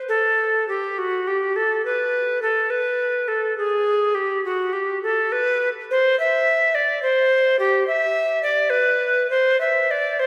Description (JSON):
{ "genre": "classical, baroque-style fantasia for unaccompanied recorder", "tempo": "70 BPM (dotted quarters)", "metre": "6/8", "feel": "rubato", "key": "unclear", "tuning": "A4 = 439 Hz", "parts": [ { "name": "alto recorder", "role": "solo", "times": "0.1-10.3 s", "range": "F#4 to E5", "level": "-20 LUFS", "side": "equal", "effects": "none" } ], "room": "wet church reverb, RT60 3.1 s", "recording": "heard from further back in the room", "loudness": "-20 LUFS", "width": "mono", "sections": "0.0-10.3 A section", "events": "none", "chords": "none", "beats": "| 0.70 1.57 | 2.43 3.29 | 4.15 5.01 | 5.89 6.74 | 7.58 8.42 | 9.30 10.19" }